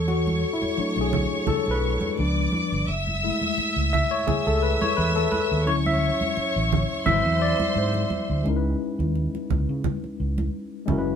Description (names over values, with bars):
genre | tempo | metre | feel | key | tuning
lush 1970s-style soul | 86 BPM | 4/4 | swing 54% on 16ths | unclear | A4 = 438 Hz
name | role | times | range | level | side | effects
rich studio string section | second line | 0.0-8.4 s | B#4 to E6 | -28 LUFS | equal | none
barky tine electric piano | accompaniment | 0.0-11.2 s | E#3 to E5 | -25 LUFS | left 3 dB | medium stereo tremolo
fingered electric bass | bass | 0.0-11.2 s | F#1 to C#3 | -26 LUFS | right 1 dB | none
congas | percussion | 0.1-11.1 s | none | -29 LUFS | right 3 dB | none
room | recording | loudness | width
moderate studio reverb, RT60 0.6 s | band playing live in one room | -21 LUFS | side -8 dB against mid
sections
0.0-8.5 A section; 8.5-11.2 B section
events
tine electric piano solo 0.0-8.5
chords
0.0 E9sus4; 2.2 C#7b9; 2.9 F#m9; 5.7 Dmaj9; 7.1 G#aug7; 8.5 C#m9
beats
| 0.08 0.78 1.48 2.18 | 2.88 3.57 4.27 4.97 | 5.67 6.36 7.06 7.76 | 8.45 9.15 9.85 10.54